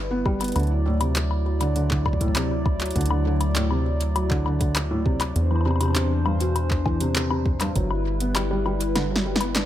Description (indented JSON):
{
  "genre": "IDM",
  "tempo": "100 BPM",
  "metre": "4/4",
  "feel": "straight",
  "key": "D mixolydian",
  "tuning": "A4 = 440 Hz",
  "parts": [
    { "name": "hollow soft pad", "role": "sustained chords", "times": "0.0-9.7 s", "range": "E3 to D5", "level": "-29 LUFS", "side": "left 1 dB", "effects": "chorus, vintage 12-bit sampler grit" },
    { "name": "rubbery square bass", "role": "bass", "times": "0.0-9.7 s", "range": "G1 to E2", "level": "-25 LUFS", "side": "equal", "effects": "tube saturation" },
    { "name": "felt-muted upright piano", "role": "arpeggios", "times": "0.1-9.7 s", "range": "G2 to D4", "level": "-27 LUFS", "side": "equal", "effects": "ping-pong delay" },
    { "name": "electro analog drum machine", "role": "drums", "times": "0.3-9.7 s", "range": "handclaps, hi-hat, snare drum, woodblock", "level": "-28 LUFS", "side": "left 2 dB", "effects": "studio reverb, ping-pong delay" },
    { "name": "electronic kick drum", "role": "drums", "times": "0.3-7.9 s", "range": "none", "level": "-25 LUFS", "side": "equal", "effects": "studio reverb" }
  ],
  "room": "little or no reverb",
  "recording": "none",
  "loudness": "-21 LUFS",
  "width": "side -12 dB against mid",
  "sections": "0.0-9.7 A section",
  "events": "kick drops out 9.0-9.7; drum fill 9.0-9.7",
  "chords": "0.0 G6; 0.6 Dadd9; 5.4 Cadd9/E; 7.8 G6"
}